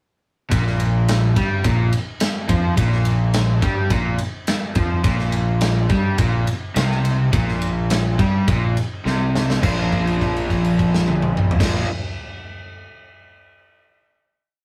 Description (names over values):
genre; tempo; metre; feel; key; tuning
classic rock; 105 BPM; 4/4; straight; Bb major; A4 = 436 Hz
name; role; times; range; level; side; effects
overdriven semi-hollow guitar; riff; 0.5-11.9 s; Bb2 to F4; -22 LUFS; equal; none
fuzz fingered electric bass; bass; 0.5-11.8 s; Bb1 to G2; -25 LUFS; equal; overdrive
big rock drum kit; drums; 0.5-11.7 s; crash cymbal, kick drum, ride cymbal, snare drum, toms; -24 LUFS; equal; none
room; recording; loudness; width
wet booth ambience, RT60 0.2 s; rough rehearsal-room recording; -19 LUFS; mono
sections
0.5-9.6 riff; 9.6-11.9 final chord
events
drum fill 9.1-9.6; held note 9.6-11.6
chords
0.5 Bb5; 9.6 Bb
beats
| 0.52 1.08 1.65 2.21 | 2.78 3.34 3.91 4.48 | 5.05 5.62 6.19 6.76 | 7.33 7.91 8.48 9.06 | 9.64 10.22 10.79 11.37